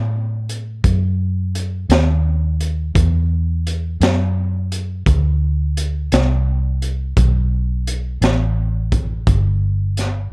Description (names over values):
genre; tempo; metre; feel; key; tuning
slow blues; 57 BPM (dotted quarters); 12/8; straight; E minor; A4 = 440 Hz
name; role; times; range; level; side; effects
vintage muted fingered electric bass; bass; 0.0-10.3 s; G1 to A2; -17 LUFS; equal; none
crunchy breakbeat drum kit; drums; 0.5-10.1 s; hi-hat, kick drum, snare drum; -18 LUFS; equal; none
room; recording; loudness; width
little or no reverb; dark, warm production; -16 LUFS; side -32 dB against mid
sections
0.0-10.3 A section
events
none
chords
none